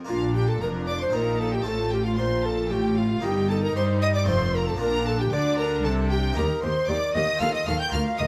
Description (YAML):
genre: classical, baroque-style concerto movement with solo episodes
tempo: 115 BPM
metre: 3/4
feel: straight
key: Bb major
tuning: A4 = 441 Hz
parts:
  - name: rich chamber violin section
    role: melody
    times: 0.0-8.3 s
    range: F5 to G6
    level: -35 LUFS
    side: equal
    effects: none
  - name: dark studio viola section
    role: accompaniment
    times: 0.0-8.3 s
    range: C4 to Bb4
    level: -36 LUFS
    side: equal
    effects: none
  - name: harpsichord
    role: accompaniment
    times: 0.0-8.3 s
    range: D2 to Bb4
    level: -38 LUFS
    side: equal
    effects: none
  - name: mellow hollow tenor recorder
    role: melody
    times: 0.1-8.3 s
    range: F4 to G5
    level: -29 LUFS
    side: equal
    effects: none
  - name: dark chamber violin section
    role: second line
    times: 0.1-8.3 s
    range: F4 to G5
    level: -37 LUFS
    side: equal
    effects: none
  - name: rich chamber cello section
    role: bass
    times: 0.1-8.3 s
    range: D2 to G3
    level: -32 LUFS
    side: equal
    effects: none
  - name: warm chamber double bass section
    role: bass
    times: 0.1-8.3 s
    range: F1 to G2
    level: -30 LUFS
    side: equal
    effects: none
room: moderate stone room reverb, RT60 1.1 s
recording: none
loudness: -24 LUFS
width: mono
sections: 0.1-8.3 A section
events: none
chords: 0.1 Bb; 1.1 Cm7/Bb; 1.7 F/A; 3.2 Eb/G; 4.3 F; 4.8 Bb; 6.4 Eb; 7.4 F7/Eb